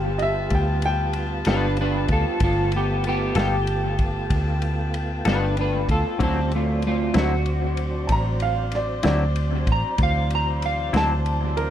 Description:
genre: slow blues.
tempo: 63 BPM (dotted quarters).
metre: 12/8.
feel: straight.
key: G mixolydian.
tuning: A4 = 440 Hz.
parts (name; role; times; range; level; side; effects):
electric guitar at the edge of break-up; melody; 0.0-11.6 s; A3 to Bb5; -26 LUFS; right 1 dB; analog chorus, analog delay.
tonewheel organ; sustained chords; 0.0-11.7 s; C#3 to F4; -33 LUFS; right 1 dB; overdrive, chorus vibrato, slow rotary speaker.
warm horn section; sustained chords; 0.0-11.7 s; B3 to A5; -34 LUFS; left 3 dB; none.
vintage muted fingered electric bass; bass; 0.0-11.7 s; G1 to D2; -24 LUFS; equal; none.
warm upright piano; second line; 0.2-1.3, 8.1-11.7 s; Bb4 to Bb5; -26 LUFS; right 2 dB; none.
warm soul drum kit; drums; 0.2-11.7 s; kick drum, ride cymbal, snare drum; -28 LUFS; equal; analog delay.
semi-hollow electric guitar; accompaniment; 1.5-11.1 s; D3 to A4; -28 LUFS; left 4 dB; harmonic tremolo, analog delay.
room: little or no reverb.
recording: echo-heavy mix.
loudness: -20 LUFS.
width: side -10 dB against mid.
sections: 0.0-11.7 A section.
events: none.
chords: 0.0 G9; 6.2 D9.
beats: 0.52 1.46 | 2.41 3.36 4.31 5.25 | 6.20 7.15 8.10 9.04 | 9.99 10.94.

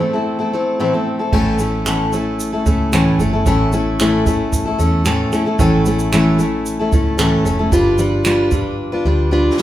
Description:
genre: acoustic pop.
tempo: 113 BPM.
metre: 4/4.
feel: straight.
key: unclear.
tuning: A4 = 438 Hz.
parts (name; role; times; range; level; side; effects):
picked steel-string acoustic guitar; accompaniment; 0.0-9.6 s; A2 to B4; -15 LUFS; left 1 dB; none.
vintage muted fingered electric bass; bass; 1.3-9.5 s; F1 to E2; -21 LUFS; equal; none.
jazz brush drum kit; drums; 1.3-9.6 s; crash cymbal, finger snaps, kick drum, shaker, snare drum; -21 LUFS; right 2 dB; none.
room: wet recital hall reverb, RT60 1.4 s.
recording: recorded in a church or concert hall.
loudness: -14 LUFS.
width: side -13 dB against mid.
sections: 0.0-1.3 A section; 1.3-9.6 B section.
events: drum fill 8.8-9.6.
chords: 0.0 Am; 1.3 A; 7.7 G7.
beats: 0.26 0.79 | 1.33 1.86 2.39 2.93 | 3.46 3.99 4.53 5.06 | 5.59 6.12 6.66 7.19 | 7.72 8.25 8.79 9.32.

